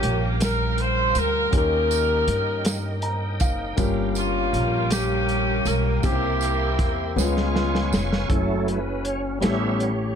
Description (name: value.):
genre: slow gospel.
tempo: 53 BPM (dotted quarters).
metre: 6/8.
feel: straight.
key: unclear.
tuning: A4 = 439 Hz.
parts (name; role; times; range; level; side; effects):
bright saxophone section; melody; 0.0-8.3 s; Ab3 to C5; -24 LUFS; right 1 dB; none.
dark upright piano; accompaniment; 0.0-10.2 s; G2 to Bb5; -28 LUFS; left 5 dB; none.
bright tonewheel organ; sustained chords; 0.0-10.2 s; F#3 to Db6; -30 LUFS; right 2 dB; slow rotary speaker, overdrive, chorus vibrato.
upright bass; bass; 0.0-10.2 s; F1 to G2; -26 LUFS; right 1 dB; none.
warm soul drum kit; drums; 0.0-10.0 s; hi-hat, kick drum, snare drum; -25 LUFS; right 1 dB; none.
tambourine; percussion; 0.4-8.3 s; none; -34 LUFS; right 8 dB; none.
room: light reverb.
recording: none.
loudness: -20 LUFS.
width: side -8 dB against mid.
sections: 0.0-8.3 A section; 8.3-10.2 B section.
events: upright piano fill 2.7-3.8; drum fill 7.2-8.3; tonewheel organ solo 8.3-10.2.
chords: 0.0 Gm7b5; 1.5 Eb7; 3.8 Gm7b5; 6.0 C7; 7.2 Db7; 8.3 F#m7; 9.4 A7.